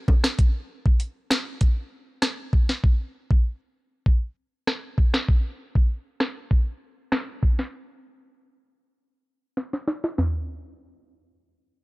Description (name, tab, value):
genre	dancehall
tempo	98 BPM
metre	4/4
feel	straight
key	none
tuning	none
part	island pop drum kit	drums	0.1-10.3 s	hi-hat, kick drum, rim click, snare drum, toms	-20 LUFS	equal	none
room	little or no reverb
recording	dry, gritty hardware recording, cassette tape, low-pass filter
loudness	-22 LUFS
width	side -23 dB against mid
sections	0.4-10.2 A section; 10.2-11.8 B section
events	filter sweep 0.4-10.2; drum fill 9.6-10.2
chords	none